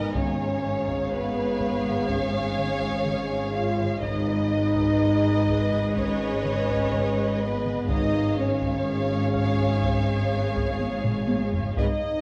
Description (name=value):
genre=cinematic, suspense film score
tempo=62 BPM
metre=4/4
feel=straight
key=unclear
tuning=A4 = 436 Hz
part: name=warm symphonic violin section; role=melody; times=0.0-11.9 s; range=D#5 to E#5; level=-37 LUFS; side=equal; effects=none
part: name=warm symphonic violin section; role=second line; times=0.0-12.2 s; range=B4 to E#5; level=-35 LUFS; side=equal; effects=none
part: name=rich symphonic viola section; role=accompaniment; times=0.0-11.8 s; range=G#4 to C#5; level=-36 LUFS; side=equal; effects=none
part: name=mellow French horn section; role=sustained chords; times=0.0-12.2 s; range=B3 to E#4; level=-30 LUFS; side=equal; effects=none
part: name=warbly tape-like pad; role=sustained chords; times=0.0-12.2 s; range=B3 to A#5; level=-37 LUFS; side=equal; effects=chorus, built-in reverb
part: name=rich studio double bass section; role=bass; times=0.0-11.8 s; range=G#1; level=-35 LUFS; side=equal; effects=transformer saturation
part: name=warm symphonic cello section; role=bass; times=0.0-11.8 s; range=G#2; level=-31 LUFS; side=equal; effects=transformer saturation
part: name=concert harp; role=texture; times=0.0-12.2 s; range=C#4 to E#5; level=-41 LUFS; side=equal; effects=none
part: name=taiko ensemble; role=drums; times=0.1-12.2 s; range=none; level=-34 LUFS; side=equal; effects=none
part: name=timpani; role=percussion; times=0.1-1.6, 7.9-9.3 s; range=G#2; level=-39 LUFS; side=equal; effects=none
room=moderate scoring stage reverb, RT60 1.6 s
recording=worn, warbling old tape, cassette tape, warbly pitch drift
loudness=-25 LUFS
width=mono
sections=0.0-12.2 A section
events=drum fill 10.8-11.8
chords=0.2 C#/G#; 4.0 G#m; 7.9 C#/G#